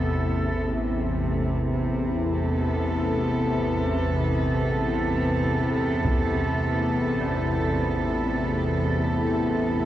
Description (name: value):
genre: dark ambient drone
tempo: free time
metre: none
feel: none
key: unclear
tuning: A4 = 439 Hz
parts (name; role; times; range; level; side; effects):
- warm studio cello section; sustained chords; 0.0-9.9 s; C3 to A4; -25 LUFS; right 1 dB; none
- organ-like drone; drone; 0.0-9.9 s; A1 to E2; -25 LUFS; left 1 dB; ensemble chorus, built-in reverb
- flickering grainy texture; texture; 0.0-0.6 s; none; barely audible; none; none
- carillon bells; arpeggios; 4.4-9.9 s; G2 to D4; -42 LUFS; equal; none
- taiko ensemble; percussion; 6.0-6.2 s; none; -29 LUFS; equal; low-pass filter on perc
room: wet huge ambient reverb, RT60 8.3 s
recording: worn, warbling old tape, cassette tape, warbly pitch drift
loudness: -22 LUFS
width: side -12 dB against mid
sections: 0.6-9.9 A section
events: none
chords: 0.0 Amadd9